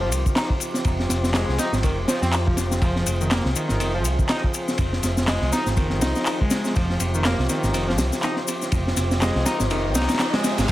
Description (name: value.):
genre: breakbeat, breaks.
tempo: 122 BPM.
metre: 4/4.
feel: swing 58% on 16ths.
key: F minor.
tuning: A4 = 440 Hz.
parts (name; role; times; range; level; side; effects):
tonewheel organ; sustained chords; 0.0-10.7 s; F3 to Ab4; -29 LUFS; equal; slow rotary speaker, sidechain pumping.
overdriven synth lead; riff; 0.0-10.7 s; Eb3 to Eb4; -27 LUFS; equal; dub echo.
picked electric bass; bass; 0.0-10.7 s; F1 to F2; -24 LUFS; equal; none.
crunchy breakbeat drum kit; drums; 0.1-10.7 s; crash cymbal, kick drum, ride cymbal, snare drum; -24 LUFS; equal; dub echo.
electronic shaker and handclaps; drums; 0.1-10.7 s; none; -30 LUFS; left 2 dB; dub echo.
riser and impact; sound effects; 9.6-10.7 s; none; -36 LUFS; right 1 dB; none.
room: light reverb, small room ambience.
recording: echo-heavy mix.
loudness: -20 LUFS.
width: side -15 dB against mid.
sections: 0.0-10.7 A section.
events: kick drops out 9.7-10.7; band accent 10.2.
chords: 0.0 Fm7.